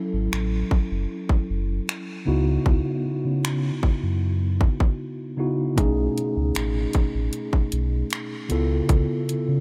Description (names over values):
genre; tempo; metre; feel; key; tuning
contemporary R&B; 77 BPM; 4/4; straight; C# minor; A4 = 440 Hz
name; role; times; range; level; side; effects
mellow tine electric piano; accompaniment; 0.0-9.6 s; B2 to A4; -28 LUFS; equal; none
sub bass with octave; bass; 0.1-9.6 s; F#1 to C#3; -27 LUFS; equal; none
trap drum kit; drums; 0.3-9.5 s; finger snaps, hi-hat, kick drum; -25 LUFS; equal; none
room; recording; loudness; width
moderate huge ambient reverb, RT60 4.7 s; dreamy mix soaked in reverb; -24 LUFS; mono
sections
0.0-9.6 A section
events
break 0.0-5.8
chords
0.0 F#m7; 2.3 C#m11; 5.8 B13; 8.5 C#7alt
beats
0.32 1.10 1.88 | 2.66 3.44 4.22 5.00 | 5.78 6.56 7.33 8.11 | 8.89